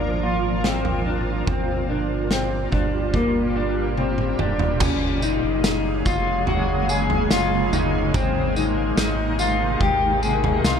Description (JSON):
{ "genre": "dream pop", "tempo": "72 BPM", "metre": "4/4", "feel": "straight", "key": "unclear", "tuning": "A4 = 445 Hz", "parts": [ { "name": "granular cloud pad", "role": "sustained chords", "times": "0.0-10.8 s", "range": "Bb2 to Bb4", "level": "-25 LUFS", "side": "right 1 dB", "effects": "built-in reverb" }, { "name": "electric guitar at the edge of break-up", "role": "arpeggios", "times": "0.0-10.8 s", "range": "Bb3 to Ab4", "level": "-24 LUFS", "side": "left 3 dB", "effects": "lush chorus, ping-pong delay" }, { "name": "round analog bass", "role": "bass", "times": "0.0-10.8 s", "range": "Eb1 to C2", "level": "-27 LUFS", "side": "equal", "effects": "none" }, { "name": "loose indie drum kit", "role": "drums", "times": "0.6-10.8 s", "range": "crash cymbal, kick drum, snare drum, tambourine, toms", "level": "-25 LUFS", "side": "right 1 dB", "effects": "none" } ], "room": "light reverb, small room ambience", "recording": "none", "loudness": "-19 LUFS", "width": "side -7 dB against mid", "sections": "0.0-4.8 A section; 4.8-10.8 B section", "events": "drum fill 4.0-4.8", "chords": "0.0 Bb; 1.5 Gm7; 4.8 Gbadd9; 8.1 Abadd9" }